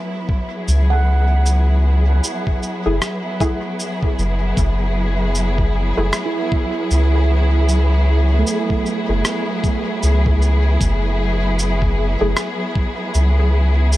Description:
ambient dub; 77 BPM; 4/4; swing 60% on 16ths; F# minor; A4 = 440 Hz
warm studio string section; sustained chords; 0.0-14.0 s; F#3 to G#4; -22 LUFS; left 1 dB
filtered dub chord stab; stabs; 0.0-14.0 s; A3 to G#4; -27 LUFS; left 1 dB; ensemble chorus, vintage 12-bit sampler grit, dub echo
electronic kick drum; drums; 0.3-12.9 s; -20 LUFS; equal; studio reverb
soft dub sub bass; bass; 0.7-14.0 s; F#1 to C#2; -15 LUFS; equal
electronic shaker and rim click; drums; 0.7-14.0 s; -25 LUFS; equal; studio reverb, dub echo
handpan; arpeggios; 0.9-10.8 s; A3 to F#5; -27 LUFS; right 7 dB; vintage 12-bit sampler grit, dub echo
little or no reverb; -15 LUFS; side -16 dB against mid
0.0-14.0 A section
0.0 F#m9

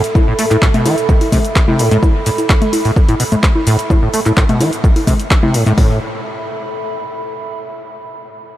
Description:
acid house; 128 BPM; 4/4; straight; A4 = 440 Hz
punchy analog drum machine; drums; 0.0-5.8 s; congas, handclaps, hi-hat, shaker; -18 LUFS; left 1 dB; overdrive, studio reverb
warbly tape-like pad; texture; 0.0-7.6 s; A4 to B5; -22 LUFS; right 2 dB; chorus, built-in reverb, sidechain pumping
acid bass, saw; riff; 0.2-6.0 s; A2 to A3; -17 LUFS; equal; ensemble chorus, sidechain pumping, tape echo
punchy analog drum machine; drums; 0.2-5.9 s; hi-hat, kick drum; -12 LUFS; equal; overdrive, studio reverb
moderate huge ambient reverb, RT60 9.3 s; dreamy mix soaked in reverb; -11 LUFS; side -14 dB against mid
0.0-5.8 A section; 5.8-7.7 B section
fade-out on ambient pad 0.0-5.8; filter sweep on acid bass 0.0-5.8
0.0 A5

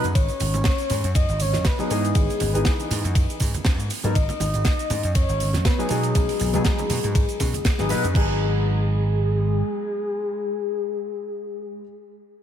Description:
nu-disco, nu disco; 120 BPM; 4/4; swing 56% on 16ths; G# minor; A4 = 436 Hz
warm concert grand piano; accompaniment; 0.0-11.8 s; E3 to B4; -28 LUFS; left 2 dB; lush chorus, diffuse ambient delay
vintage slap bass; bass; 0.0-9.6 s; G#1 to B2; -24 LUFS; equal
tight funk drum kit; drums; 0.0-8.3 s; cabasa, crash cymbal, hi-hat, ride cymbal, snare drum; -29 LUFS; right 2 dB; studio reverb
tambourine and congas; percussion; 0.0-8.1 s; -34 LUFS; right 4 dB
soft octave-layered synth lead; melody; 0.1-11.8 s; G#4 to D#5; -27 LUFS; left 2 dB; chorus, phaser, tape echo
electronic kick drum; drums; 0.2-8.3 s; -21 LUFS; equal; studio reverb
light reverb, small room ambience; -20 LUFS; side -10 dB against mid
0.0-8.2 A section; 8.2-12.2 B section
drop 0.0-8.2
0.0 G#m7; 1.9 Emaj7/G#; 3.9 G#m7

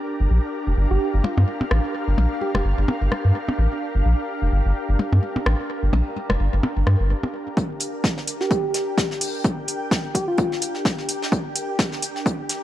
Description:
minimal techno; 128 BPM; 4/4; swing 57% on 16ths; G minor; A4 = 440 Hz
ethereal airy pad; texture; 0.0-12.6 s; D4 to G5; -30 LUFS; right 1 dB; ensemble chorus, built-in reverb, sidechain pumping
swarming drone; texture; 0.0-12.6 s; G4; -35 LUFS; left 1 dB; built-in reverb, sidechain pumping
round analog bass; bass; 0.2-7.1 s; F1 to G2; -18 LUFS; equal; sidechain pumping
soft struck synth lead; melody; 0.9-2.6, 8.4-10.7 s; F4 to G4; -27 LUFS; right 1 dB; chorus, phaser, digital delay
electronic percussion blips and rim click; percussion; 1.2-7.3 s; -26 LUFS; left 1 dB; digital delay
electronic kick drum; drums; 7.6-12.4 s; -22 LUFS; equal; overdrive, high-pass filter on kick, high-pass filter on room
soft brush drum kit; drums; 7.6-12.6 s; hi-hat, snare drum; -30 LUFS; left 2 dB; high-pass filter on hats, high-pass filter on snare, high-pass filter on room
electronic hi-hat; drums; 7.8-12.6 s; -25 LUFS; equal; overdrive
light reverb; dark, warm production; -20 LUFS; side -13 dB against mid
0.0-7.6 A section; 7.6-12.6 B section
build-up 7.6-12.6; filter sweep on soft synth lead 7.6-12.6
0.0 Gm

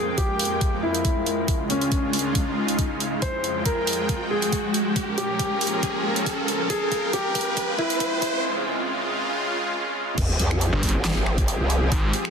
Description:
heavy wobble dubstep; 138 BPM; 4/4; swing 53% on 16ths, half-time; F harmonic minor; A4 = 440 Hz
dark baby grand piano; melody; 0.0-8.4 s; Db4 to C5; -27 LUFS; left 2 dB; dub echo
supersaw pad; sustained chords; 0.0-12.3 s; Db2 to G5; -28 LUFS; equal; sidechain pumping
riser and sub drop; sound effects; 0.2-11.9 s; -30 LUFS; equal
granular cloud pad; texture; 0.0-12.3 s; Ab3 to G5; -31 LUFS; equal; built-in reverb, sidechain pumping
dubstep drum kit; drums; 0.2-12.3 s; crash cymbal, finger snaps, handclaps, hi-hat, snare drum; -28 LUFS; right 2 dB; overdrive
electronic kick drum; drums; 0.2-12.0 s; -26 LUFS; equal; overdrive
growl bass; bass; 10.2-11.9 s; F1 to F2; -23 LUFS; equal; chorus, overdrive
snarling distorted saw bass; bass; 10.7-12.1 s; G1 to Ab1; -24 LUFS; equal; distortion, overdrive
light reverb; dense, heavily limited modern master, high-pass filter; -21 LUFS; side -6 dB against mid
0.0-10.2 A section; 10.2-12.3 B section
build-up 0.0-10.2; filter sweep 0.0-10.2; riser 0.2-8.4; drum fill 3.2-8.4; break 8.4-10.2; drop 10.2-12.3; impact 10.2-11.9
0.0 Fmadd9; 1.5 Db; 3.2 Fmadd9; 5.0 Bbm; 6.7 Fmadd9; 8.4 Db; 10.2 Fmadd9

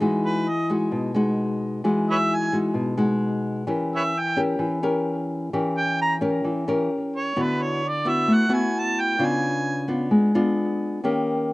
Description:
bossa nova; 130 BPM; 4/4; straight; A4 = 444 Hz
nylon-string guitar; accompaniment; 0.0-11.5 s; B2 to Bb4; -22 LUFS; left 1 dB
mellow harmonica; melody; 0.3-9.9 s; B4 to Bb5; -24 LUFS; right 2 dB
little or no reverb; recorded outdoors, with no room sound; -21 LUFS; side -20 dB against mid
0.0-11.5 A section
harmonica solo 0.0-11.5
0.0 Emaj9; 3.7 Edim7; 6.9 Gdim/Db; 7.4 D69; 9.2 C#7b9

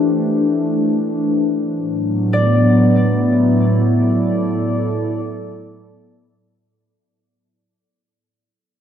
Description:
ambient; free time; A4 = 440 Hz
warbly tape-like pad; sustained chords; 0.0-6.6 s; A2 to D5; -15 LUFS; left 1 dB; chorus, built-in reverb
concert harp; arpeggios; 2.3-6.2 s; D5; -22 LUFS; right 2 dB; diffuse ambient delay
wet cathedral reverb, RT60 6.1 s; dark, warm production; -14 LUFS; side -9 dB against mid
0.0-6.6 A section
filter sweep on ambient pad 0.0-6.6; fade-out 3.2-6.6
0.0 Am; 1.5 Bm/A

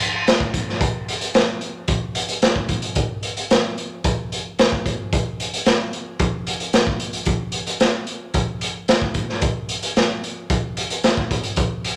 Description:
rock; 111 BPM; 4/4; straight
raw garage drum kit; drums; 0.0-12.0 s; hi-hat, kick drum, snare drum; -21 LUFS; equal
moderate large studio reverb, RT60 1.4 s; -21 LUFS; mono
0.0-12.0 A section

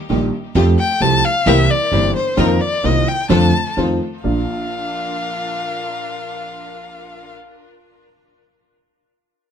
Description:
tango; 131 BPM; 4/4; rubato; Bb major; A4 = 440 Hz
warm upright piano; accompaniment; 0.1-7.3 s; G1 to G4; -18 LUFS; equal
bright symphonic string section; stabs; 0.1-7.3 s; A3 to Bb4; -27 LUFS; left 1 dB; tape echo
upright bass; bass; 0.1-4.4 s; G1 to F2; -18 LUFS; right 2 dB
warm violin; second line; 0.8-7.3 s; Bb4 to A5; -20 LUFS; left 3 dB
light reverb; close, detailed microphones; -15 LUFS; side -8 dB against mid
0.0-4.2 A section; 4.2-7.9 B section
violin solo 0.0-4.2
0.0 Eb; 0.6 Fadd9; 1.5 C7; 2.4 F7sus4; 3.3 F6; 3.8 F7; 4.2 Bb

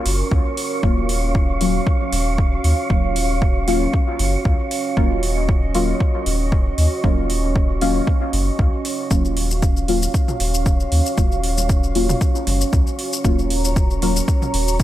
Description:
dub techno; 116 BPM; 4/4; swing 55% on 16ths; Eb minor; A4 = 440 Hz
dark analog pad; sustained chords; 0.0-14.8 s; Db4 to Bb5; -25 LUFS; right 3 dB; chorus, sidechain pumping
wind-like tuned noise texture; texture; 0.0-14.8 s; Db5; -29 LUFS; right 3 dB; built-in reverb, sidechain pumping
soft dub sub bass; bass; 0.1-14.8 s; Eb1 to Eb2; -21 LUFS; equal; sidechain pumping
electronic hi-hat and shaker; drums; 0.1-14.8 s; -27 LUFS; equal; overdrive
electronic kick drum; drums; 0.3-14.8 s; -18 LUFS; equal; overdrive
deep mellow chord stab; stabs; 0.8-14.2 s; Gb3 to F4; -25 LUFS; left 2 dB; chorus, phaser, sidechain pumping, dub echo
electronic toms and congas; percussion; 10.3-14.5 s; -30 LUFS; equal; overdrive, sidechain pumping on toms, sidechain pumping on perc, dub echo
little or no reverb; -16 LUFS; side -13 dB against mid
0.0-14.8 A section
0.0 Ebm9

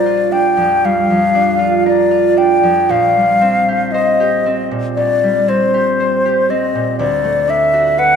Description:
classical, impressionist duo for flute and harp; 58 BPM; 4/4; rubato; A4 = 441 Hz
silver concert flute; melody; 0.0-8.2 s; C5 to G5; -13 LUFS; left 2 dB
concert harp; accompaniment; 0.0-8.2 s; Bb1 to C5; -16 LUFS; right 3 dB
wet concert hall reverb, RT60 2.4 s; -11 LUFS; side -7 dB against mid
0.0-8.2 A section
0.0 Bb6; 2.9 C5/Bb; 7.0 D6

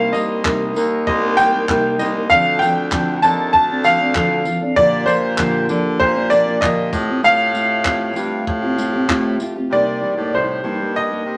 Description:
acoustic pop; 97 BPM; 4/4; straight; A4 = 439 Hz
bright upright piano; melody; 0.0-11.4 s; C5 to A5; -19 LUFS; equal
fingerpicked steel-string acoustic guitar; accompaniment; 0.0-11.4 s; Bb2 to Bb4; -23 LUFS; equal
warm baritone saxophone; bass; 0.0-11.4 s; C2 to D3; -26 LUFS; equal
compact cocktail drum kit; drums; 0.1-9.5 s; handclaps, kick drum, tambourine; -26 LUFS; equal
wet studio reverb, RT60 0.8 s; -17 LUFS; mono
0.0-9.7 A section; 9.7-11.4 B section
0.0 Cm7; 2.3 Dm7; 4.8 Bb6; 6.9 Fadd9; 9.7 Cm7

